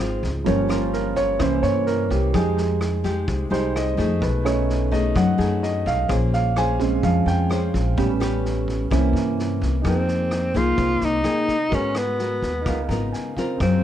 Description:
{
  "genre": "bossa nova",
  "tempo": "128 BPM",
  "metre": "4/4",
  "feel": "straight",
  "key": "F minor from 9.8 s",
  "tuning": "A4 = 440 Hz",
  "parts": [
    { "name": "nylon-string guitar", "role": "accompaniment", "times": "0.0-13.8 s", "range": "Ab2 to C5", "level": "-25 LUFS", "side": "left 4 dB", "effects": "none" },
    { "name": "warm concert grand piano", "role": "accompaniment", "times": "0.0-13.8 s", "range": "E3 to Bb5", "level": "-24 LUFS", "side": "right 4 dB", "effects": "none" },
    { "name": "upright bass", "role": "bass", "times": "0.0-13.8 s", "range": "G1 to Ab2", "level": "-24 LUFS", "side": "equal", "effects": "none" },
    { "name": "vintage drum kit", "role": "drums", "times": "0.2-13.7 s", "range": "kick drum, rim click, snare drum", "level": "-32 LUFS", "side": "equal", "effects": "none" },
    { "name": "breathy tenor saxophone", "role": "melody", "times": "9.9-13.8 s", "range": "Cb4 to F4", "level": "-23 LUFS", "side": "equal", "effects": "none" }
  ],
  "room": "little or no reverb",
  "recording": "dark, warm production",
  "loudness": "-19 LUFS",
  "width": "side -10 dB against mid",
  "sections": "0.0-9.8 A section; 9.8-13.8 B section",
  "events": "grand piano solo 0.0-9.8; grand piano fill 12.7-13.6",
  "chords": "0.5 Gm7b5; 1.4 C7b9; 2.3 Fm9; 4.2 B13; 6.1 Bbm9; 8.0 A9; 8.9 C7b9; 9.8 Fm11; 11.7 Abm9; 12.7 Db13"
}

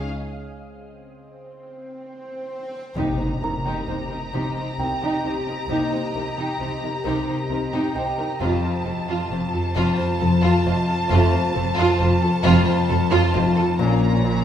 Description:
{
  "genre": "cinematic, suspense film score",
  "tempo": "66 BPM",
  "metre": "3/4",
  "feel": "straight",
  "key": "C phrygian",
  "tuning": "A4 = 441 Hz",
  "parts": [
    { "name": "rich chamber violin section", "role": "melody", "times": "0.0-14.4 s", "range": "A5 to Bb5", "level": "-29 LUFS", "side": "equal", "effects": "none" },
    { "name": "rich chamber violin section", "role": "second line", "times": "0.0-14.4 s", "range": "F4 to Db5", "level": "-31 LUFS", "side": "left 1 dB", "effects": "none" },
    { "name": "dark chamber viola section", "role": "accompaniment", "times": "0.0-14.4 s", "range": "Eb4 to F4", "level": "-27 LUFS", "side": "right 2 dB", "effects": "none" },
    { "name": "evolving wavetable pad", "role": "sustained chords", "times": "0.0-14.4 s", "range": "F4 to Bb5", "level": "-33 LUFS", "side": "left 1 dB", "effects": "ensemble chorus, built-in reverb, phaser" },
    { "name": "Celtic harp", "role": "riff", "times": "0.0-14.4 s", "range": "F2 to Db4", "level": "-25 LUFS", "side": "left 4 dB", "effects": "none" },
    { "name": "dark chamber double bass section", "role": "bass", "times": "0.0-14.4 s", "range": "F1 to C2", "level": "-26 LUFS", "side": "right 2 dB", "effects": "none" },
    { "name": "rich symphonic cello section", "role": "bass", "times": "0.0-14.4 s", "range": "F2 to C3", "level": "-26 LUFS", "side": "right 2 dB", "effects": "none" },
    { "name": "music box", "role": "texture", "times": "0.0-14.4 s", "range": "Eb4 to Bb5", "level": "-33 LUFS", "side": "right 4 dB", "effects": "none" },
    { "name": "swell and impact", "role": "sound effects", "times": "1.4-5.7 s", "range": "none", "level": "-34 LUFS", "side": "equal", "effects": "none" },
    { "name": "mellow French horn section", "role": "sustained chords", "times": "3.0-14.1 s", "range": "F3 to Eb4", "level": "-28 LUFS", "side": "left 4 dB", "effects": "none" },
    { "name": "timpani", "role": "percussion", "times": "3.0-4.3 s", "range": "C3", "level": "-32 LUFS", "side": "left 1 dB", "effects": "none" }
  ],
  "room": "wet recital hall reverb, RT60 1.5 s",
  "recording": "recorded in a church or concert hall",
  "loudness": "-19 LUFS",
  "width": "side -9 dB against mid",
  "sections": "0.0-3.0 A section; 3.0-14.4 B section",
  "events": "break 0.1-3.0; swell 1.4-3.0; impact 3.0-5.7",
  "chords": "0.0 Db5; 3.0 Cm7; 8.4 F; 13.8 Bbm"
}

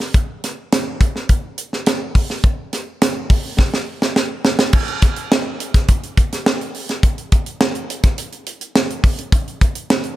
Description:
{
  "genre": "pop",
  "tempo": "104 BPM",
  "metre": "4/4",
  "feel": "straight",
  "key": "none",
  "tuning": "none",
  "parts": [
    { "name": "tight funk drum kit", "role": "drums", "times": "0.0-10.2 s", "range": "crash cymbal, hi-hat, kick drum, snare drum", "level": "-15 LUFS", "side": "equal", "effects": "none" }
  ],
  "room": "light reverb",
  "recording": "none",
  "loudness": "-16 LUFS",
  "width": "side -15 dB against mid",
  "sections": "0.0-4.7 A section; 4.7-10.2 B section",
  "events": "drum fill 3.6-4.7",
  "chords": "none"
}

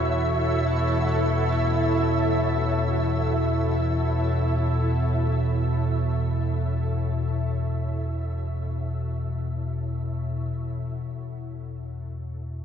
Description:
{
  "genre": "ambient",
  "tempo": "free time",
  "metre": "none",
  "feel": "none",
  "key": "unclear",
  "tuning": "A4 = 441 Hz",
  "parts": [
    { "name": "granular cloud pad", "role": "sustained chords", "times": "0.0-10.6 s", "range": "E4 to C#5", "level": "-29 LUFS", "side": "right 1 dB", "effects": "built-in reverb" },
    { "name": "deep rumbling drone", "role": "drone", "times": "0.0-12.6 s", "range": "E2 to B2", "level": "-25 LUFS", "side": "left 1 dB", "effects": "built-in reverb, wide subtle chorus" },
    { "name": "flickering grainy texture", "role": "texture", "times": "0.0-10.6 s", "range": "E5", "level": "-33 LUFS", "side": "right 2 dB", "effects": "built-in reverb" }
  ],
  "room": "wet huge ambient reverb, RT60 8.1 s",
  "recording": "none",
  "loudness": "-23 LUFS",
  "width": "side -8 dB against mid",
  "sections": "0.0-10.6 A section; 10.6-12.6 B section",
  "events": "fade-out on ambient pad 0.0-10.6; fade-out on synth texture 0.0-10.6",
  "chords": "0.0 A; 10.6 E5"
}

